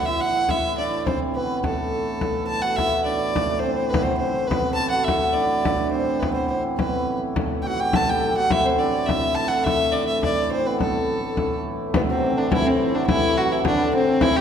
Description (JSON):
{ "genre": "medieval dance", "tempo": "105 BPM", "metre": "2/4", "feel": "straight", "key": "A dorian", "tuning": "A4 = 444 Hz", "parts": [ { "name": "dark fiddle", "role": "melody", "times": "0.0-14.4 s", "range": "B3 to A5", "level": "-23 LUFS", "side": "equal", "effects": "none" }, { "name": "hammered dulcimer", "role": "second line", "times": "0.0-14.4 s", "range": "B2 to A4", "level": "-24 LUFS", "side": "right 2 dB", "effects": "none" }, { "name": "hand-pumped harmonium", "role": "drone", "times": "0.0-14.4 s", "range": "A2 to E3", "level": "-31 LUFS", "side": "left 1 dB", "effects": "none" }, { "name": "frame drum", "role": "percussion", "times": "0.2-14.4 s", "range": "none", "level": "-26 LUFS", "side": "left 2 dB", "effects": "none" } ], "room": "wet concert hall reverb, RT60 1.7 s", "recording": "minimal, uncompressed stereo recording", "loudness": "-19 LUFS", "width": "side -8 dB against mid", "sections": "0.0-2.8 A section; 2.8-11.9 A section; 11.9-14.4 B section", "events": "none", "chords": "none" }